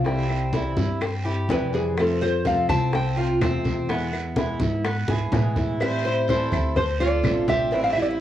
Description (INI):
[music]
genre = latin, Cuban son and guajira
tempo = 125 BPM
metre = 4/4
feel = straight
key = A minor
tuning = A4 = 440 Hz
[part]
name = nylon-string guitar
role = melody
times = 0.0-8.2 s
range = G#4 to A5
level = -25 LUFS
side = equal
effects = plate reverb, tape echo
[part]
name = nylon-string guitar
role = accompaniment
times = 0.0-8.2 s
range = B2 to F4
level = -28 LUFS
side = left 2 dB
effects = none
[part]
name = Cuban tres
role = arpeggios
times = 0.0-8.2 s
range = B3 to C5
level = -29 LUFS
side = right 1 dB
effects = none
[part]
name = upright bass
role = bass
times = 0.0-8.2 s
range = A1 to A2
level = -26 LUFS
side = equal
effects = none
[part]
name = guiro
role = percussion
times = 0.0-8.2 s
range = none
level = -40 LUFS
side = right 5 dB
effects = none
[part]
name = bongos and cowbell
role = percussion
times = 0.1-8.0 s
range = none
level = -32 LUFS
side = left 4 dB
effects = none
[part]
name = congas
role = percussion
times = 0.1-8.2 s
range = none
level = -29 LUFS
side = equal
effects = none
[part]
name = claves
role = percussion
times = 0.3-8.2 s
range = none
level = -38 LUFS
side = equal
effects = none
[part]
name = rich chamber violin section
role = second line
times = 5.8-8.2 s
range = A4 to D5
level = -35 LUFS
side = left 3 dB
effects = none
[sound]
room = light reverb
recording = worn, warbling old tape, cassette tape, warbly pitch drift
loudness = -21 LUFS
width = side -12 dB against mid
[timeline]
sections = 0.0-5.8 A section; 5.8-8.2 B section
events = nylon-string guitar solo 0.0-5.8; drum fill 5.1-5.8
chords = 0.1 C; 2.0 F; 3.9 E; 5.8 Am7; 6.8 Dm7